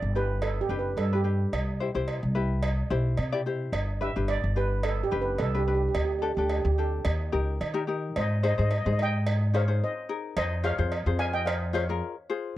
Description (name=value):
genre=calypso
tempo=109 BPM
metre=4/4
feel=swing 53% on 16ths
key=G major, Ab major from 8.2 s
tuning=A4 = 440 Hz
part: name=steel pan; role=melody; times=0.0-12.3 s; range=G4 to Ab5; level=-31 LUFS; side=right 3 dB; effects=none
part: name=upright bass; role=bass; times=0.0-12.0 s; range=F#1 to Eb3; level=-27 LUFS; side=equal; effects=none
part: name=ukulele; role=accompaniment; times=0.2-12.6 s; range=D4 to D5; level=-31 LUFS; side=left 5 dB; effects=none
part: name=cowbell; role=percussion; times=0.4-11.9 s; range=none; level=-35 LUFS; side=right 3 dB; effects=none
room=little or no reverb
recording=dry, close 1970s-style studio recording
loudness=-25 LUFS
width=side -14 dB against mid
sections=0.0-8.2 A section; 8.2-12.6 B section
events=steel pan solo 0.0-8.2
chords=0.0 Gmaj7; 1.5 Cmaj7; 3.7 G; 5.9 Dsus4; 7.0 Eb7; 8.2 Abadd9; 10.4 Fm